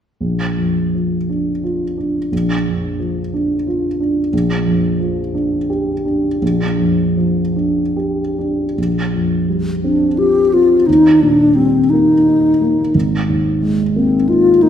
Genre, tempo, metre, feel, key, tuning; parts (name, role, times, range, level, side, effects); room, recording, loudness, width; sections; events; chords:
classical, impressionist duo for alto flute and grand piano; 46-62 BPM (dotted quarters); 6/8; rubato; Bb major; A4 = 442 Hz
dark baby grand piano; accompaniment; 0.2-14.7 s; Ab1 to G4; -16 LUFS; right 1 dB
mellow hollow alto flute; melody; 9.8-14.7 s; C4 to G4; -11 LUFS; left 2 dB
wet scoring stage reverb, RT60 1.5 s; -13 LUFS; side -9 dB against mid
0.2-8.8 A section; 8.8-14.7 B section
0.2 Bb; 4.3 Bb6; 8.8 Bbsus2; 10.9 Eb; 12.9 Absus2